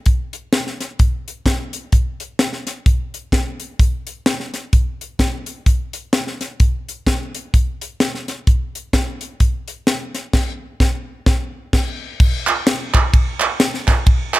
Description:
gospel; 129 BPM; 4/4; swing 59% on 8ths
tight funk drum kit; drums; 0.1-14.4 s; crash cymbal, hi-hat, kick drum, ride cymbal, snare drum; -16 LUFS; equal
group handclap; percussion; 12.5-14.4 s; -19 LUFS; right 5 dB
light reverb; -17 LUFS; side -17 dB against mid
0.0-12.2 A section; 12.2-14.4 B section
band accent 10.3-12.2

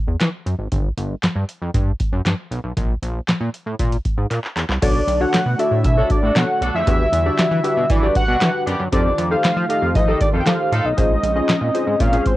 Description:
early-eighties boogie funk; 117 BPM; 4/4; straight; A4 = 438 Hz
chorused synth bass; bass; 0.1-12.2 s; G1 to F3; -21 LUFS; equal; transformer saturation
booming analog drum machine; drums; 0.2-12.4 s; crash cymbal, handclaps, hi-hat, kick drum, snare drum; -20 LUFS; equal; cassette tape
fat analog lead; melody; 4.8-12.4 s; B#4 to G5; -20 LUFS; equal; chorus, cassette tape
funky polysynth comp; accompaniment; 4.8-12.3 s; C#4 to Eb5; -23 LUFS; left 2 dB; chorus
chorused pulse-width pad; sustained chords; 4.8-12.4 s; D3 to F#4; -28 LUFS; right 1 dB
clear horn section; second line; 6.0-12.2 s; B3 to A4; -28 LUFS; equal
digital ambience; home recording on cassette; -16 LUFS; side -16 dB against mid
0.0-4.8 A section; 4.8-12.4 B section
drum fill 4.3-4.8
0.0 Esus2; 0.7 N.C.; 4.8 Bm9; 6.9 Em9; 8.9 F7; 11.0 A#m9

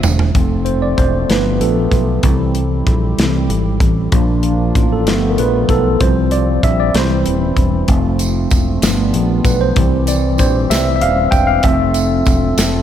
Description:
slow gospel; 64 BPM (dotted quarters); 6/8; straight; F major; A4 = 440 Hz
tine electric piano; accompaniment; 0.0-12.8 s; E3 to G5; -16 LUFS; equal; medium stereo tremolo
fingered electric bass; bass; 0.0-12.8 s; Eb1 to C2; -17 LUFS; equal
modern studio drum kit; drums; 0.0-12.7 s; hi-hat, kick drum, snare drum, toms; -17 LUFS; equal
tambourine; percussion; 0.0-0.3, 8.2-12.8 s; -28 LUFS; right 5 dB
hand-pumped harmonium; sustained chords; 0.4-12.8 s; E3 to A4; -25 LUFS; right 1 dB
moderate concert hall reverb, RT60 2.5 s; -12 LUFS; side -10 dB against mid
0.4-12.8 A section
drum fill 0.0-0.4; tine electric piano solo 0.4-12.8
0.4 F; 1.3 G9; 2.2 C; 4.1 Bb; 5.1 G9; 6.0 Csus4; 6.9 C; 7.9 F; 8.8 G7; 9.8 C; 11.6 F

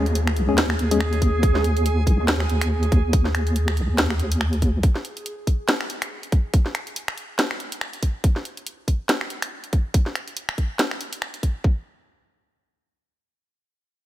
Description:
deep dubstep; 141 BPM; 4/4; swing 57% on 16ths, half-time; A4 = 440 Hz
percussive organ stab; stabs; 0.0-1.0 s; G#3 to G#4; -26 LUFS; left 3 dB; chorus, dub echo
deep soft wobble bass; bass; 0.0-4.8 s; B1 to D#2; -21 LUFS; equal; chorus, tube saturation
downlifter; sound effects; 0.0-1.4 s; -40 LUFS; left 1 dB
backwards swelling texture; texture; 0.1-4.8 s; G#4; -30 LUFS; right 3 dB; built-in reverb
garage drum kit; drums; 0.1-11.5 s; finger snaps, hi-hat, snare drum; -25 LUFS; equal
electronic kick drum; drums; 1.2-11.7 s; -19 LUFS; equal
little or no reverb; -20 LUFS; side -13 dB against mid
0.0-11.6 A section; 11.6-14.1 B section

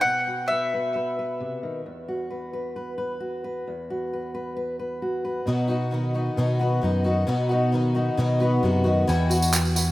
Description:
indie folk with a building arrangement; 133 BPM; 4/4; straight; A4 = 441 Hz
bowl-back mandolin; melody; 0.0-1.6 s; E5 to F#5; -24 LUFS; left 1 dB; digital delay
fingerpicked steel-string acoustic guitar; accompaniment; 0.0-9.1 s; E2 to B4; -28 LUFS; left 1 dB
picked twelve-string acoustic guitar; accompaniment; 5.5-9.9 s; B2 to F#4; -26 LUFS; left 2 dB
picked electric bass; bass; 5.5-9.9 s; E2 to B2; -23 LUFS; equal
tambourine; percussion; 9.1-9.9 s; -26 LUFS; right 3 dB
group handclap; percussion; 9.5-9.6 s; -28 LUFS; right 2 dB
moderate lush hall reverb, RT60 2.7 s; rough home demo mix; -22 LUFS; side -17 dB against mid
0.0-5.5 A section; 5.5-9.9 B section
build-up 5.5-9.9
0.0 B; 1.9 Esus2; 5.5 B; 9.1 Emadd9

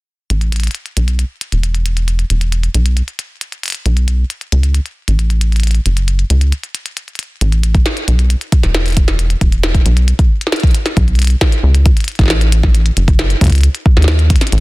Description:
IDM; 135 BPM; 4/4; straight; A lydian; A4 = 440 Hz
rubbery square bass; bass; 0.3-14.6 s; E1 to D#2; -12 LUFS; equal
glitchy drum kit; drums; 0.3-14.6 s; hi-hat, snare drum; -19 LUFS; left 1 dB; digital delay
electronic kick drum; drums; 7.7-14.4 s; -11 LUFS; equal
digital ambience; dense, heavily limited modern master; -11 LUFS; side -21 dB against mid
0.3-7.4 A section; 7.4-14.6 B section
filter sweep on analog synth bass 0.3-7.4; break 6.5-7.4

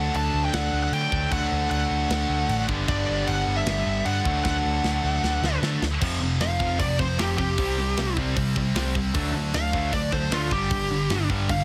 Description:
punk rock; 153 BPM; 4/4; straight; A4 = 440 Hz
smooth overdriven lead guitar; melody; 0.0-11.6 s; F4 to A5; -29 LUFS; equal
heavy high-gain guitar; riff; 0.0-11.6 s; F2 to D4; -35 LUFS; equal; distortion
overdriven electric guitar; riff; 0.0-11.6 s; F2 to D4; -32 LUFS; equal
tight distorted guitar; riff; 0.0-11.6 s; F2 to D4; -35 LUFS; equal; distortion
overdriven picked electric bass; bass; 0.0-11.6 s; F1 to D3; -30 LUFS; equal
tight metal drum kit; drums; 0.1-11.6 s; crash cymbal, hi-hat, kick drum, snare drum; -33 LUFS; equal
little or no reverb; heavily compressed radio sound, multiband compression; -24 LUFS; mono
0.0-6.0 A section; 6.0-11.6 B section
half time 0.0-6.0; drum fill 4.5-6.0; lead electric guitar solo 6.0-11.6
0.0 D; 2.7 G; 4.3 D; 6.0 F5; 7.6 C5; 9.1 D; 10.5 G5

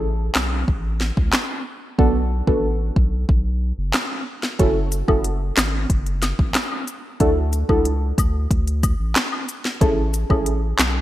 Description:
dancehall; 92 BPM; 4/4; straight; F# minor; A4 = 440 Hz
deep mellow chord stab; accompaniment; 0.0-10.5 s; B3 to A4; -23 LUFS; right 1 dB; chorus, sidechain pumping
saturated sub bass; bass; 0.0-11.0 s; F#1 to D2; -22 LUFS; equal
afro-pop drum kit; drums; 0.4-10.9 s; handclaps, hi-hat, kick drum, snare drum; -20 LUFS; equal; gated reverb
cabasa and woodblock; percussion; 4.9-10.9 s; -32 LUFS; left 6 dB
light reverb, digital ambience; bright 1980s-style digital production; -18 LUFS; side -14 dB against mid
0.0-11.0 A section
break 0.0-4.6
0.0 N.C.; 2.0 Bm7; 4.6 F#m7; 7.2 Dadd9; 9.8 Amaj7

